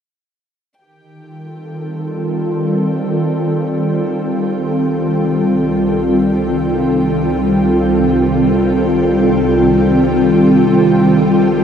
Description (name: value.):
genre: ambient.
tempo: free time.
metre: none.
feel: none.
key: C dorian.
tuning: A4 = 441 Hz.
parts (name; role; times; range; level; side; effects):
ethereal airy pad; sustained chords; 1.7-11.6 s; C2 to A4; -12 LUFS; equal; ensemble chorus, built-in reverb.
warm studio violin section; texture; 0.8-11.6 s; G4 to G5; -30 LUFS; left 1 dB; none.
room: wet huge ambient reverb, RT60 7.1 s.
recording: dark, warm production.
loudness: -12 LUFS.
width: side -8 dB against mid.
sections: 0.8-11.6 A section.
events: fade-in on violin section 0.8-11.6.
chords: 0.8 Cm6; 4.5 F9/C.